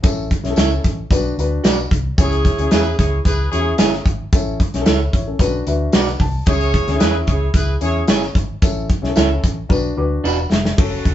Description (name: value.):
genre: uptempo 1960s-style soul.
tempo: 112 BPM.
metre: 4/4.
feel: straight.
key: unclear.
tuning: A4 = 440 Hz.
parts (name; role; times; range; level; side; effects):
dark baby grand piano; accompaniment; 0.0-11.1 s; C#4 to D6; -23 LUFS; left 4 dB; none.
vintage muted fingered electric bass; bass; 0.0-11.1 s; E1 to E2; -22 LUFS; equal; none.
natural country drum kit; drums; 0.0-11.1 s; crash cymbal, hi-hat, kick drum, snare drum; -17 LUFS; equal; none.
tambourine; percussion; 0.1-10.4 s; none; -33 LUFS; left 2 dB; none.
electric guitar through a small old amp; stabs; 0.6-10.4 s; D4 to D5; -20 LUFS; right 5 dB; none.
clear horn section; second line; 2.2-11.1 s; C#4 to C#5; -22 LUFS; right 2 dB; tube saturation.
room: moderate studio reverb, RT60 0.7 s.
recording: band playing live in one room, nothing above 7.9 kHz.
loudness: -15 LUFS.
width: side -12 dB against mid.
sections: 0.0-10.8 A section.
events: grand piano fill 5.4-6.5, 9.7-10.8; drum fill 9.7-10.8.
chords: 0.0 A; 1.1 Bm; 2.2 C#m; 4.3 A; 5.4 Bm; 6.5 C#m; 8.6 A; 9.7 Bm.